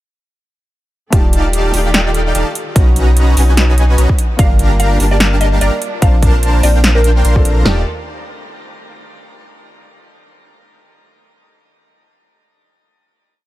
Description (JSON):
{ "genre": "future bass", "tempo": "147 BPM", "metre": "4/4", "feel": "swing 55% on 16ths, half-time", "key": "Eb lydian", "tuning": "A4 = 440 Hz", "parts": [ { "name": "felt-muted upright piano", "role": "accompaniment", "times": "1.1-7.8 s", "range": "A3 to A5", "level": "-25 LUFS", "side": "left 2 dB", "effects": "sidechain pumping, digital delay" }, { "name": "warm studio string section", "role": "sustained chords", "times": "1.1-7.8 s", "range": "Eb3 to D5", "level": "-27 LUFS", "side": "equal", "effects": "sidechain pumping" }, { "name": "dense compressed supersaw", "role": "riff", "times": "1.1-7.8 s", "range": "C#4 to C6", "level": "-20 LUFS", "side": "equal", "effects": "sidechain pumping, digital delay" }, { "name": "saturated sub bass", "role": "bass", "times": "1.1-7.8 s", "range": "Eb1 to B1", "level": "-12 LUFS", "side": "equal", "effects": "sidechain pumping" }, { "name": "big-room dance drum kit", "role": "drums", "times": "1.1-7.8 s", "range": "kick drum, snare drum, toms", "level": "-12 LUFS", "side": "equal", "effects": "overdrive" }, { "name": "big-room dance drum kit", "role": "drums", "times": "1.1-7.5 s", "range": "hi-hat, snare drum", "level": "-17 LUFS", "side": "equal", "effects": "none" }, { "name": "mallet-like synth pluck", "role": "melody", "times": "4.4-7.8 s", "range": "Bb4 to F5", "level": "-22 LUFS", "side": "equal", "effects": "ensemble chorus, cassette tape, sidechain pumping, dub echo" } ], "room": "little or no reverb", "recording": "none", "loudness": "-10 LUFS", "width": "side -16 dB against mid", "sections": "1.1-7.7 drop; 7.7-9.3 final chord", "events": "drop 1.1-7.7", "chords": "1.1 Ebmaj9#11; 2.8 Bmaj9; 4.4 Gm7; 6.0 Bbmaj9; 7.7 Ebmaj9#11" }